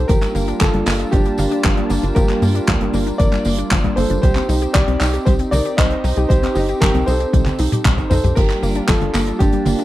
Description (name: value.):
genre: italo disco.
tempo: 116 BPM.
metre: 4/4.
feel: straight.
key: G minor.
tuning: A4 = 437 Hz.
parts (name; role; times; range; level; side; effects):
warm baby grand piano; melody; 0.0-9.8 s; D4 to Eb5; -22 LUFS; equal; tape echo.
warm analog pad; sustained chords; 0.0-9.8 s; G3 to A5; -24 LUFS; right 2 dB; chorus.
analog pluck; arpeggios; 0.0-9.8 s; F3 to G4; -25 LUFS; left 3 dB; chorus, cassette tape, tape echo.
tight sequencer bass; bass; 0.0-9.8 s; G1 to G2; -20 LUFS; equal; none.
damped 70s drum kit; drums; 0.1-9.8 s; crash cymbal, handclaps, hi-hat, tambourine, toms; -23 LUFS; equal; small room reverb.
electronic kick drum; drums; 0.1-9.5 s; none; -17 LUFS; equal; small room reverb.
room: little or no reverb.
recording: dry, close 1970s-style studio recording.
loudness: -14 LUFS.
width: side -15 dB against mid.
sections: 0.0-9.8 A section.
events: drum fill 7.3-8.4.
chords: 0.1 Gm7; 4.2 Cm; 8.4 Gm7.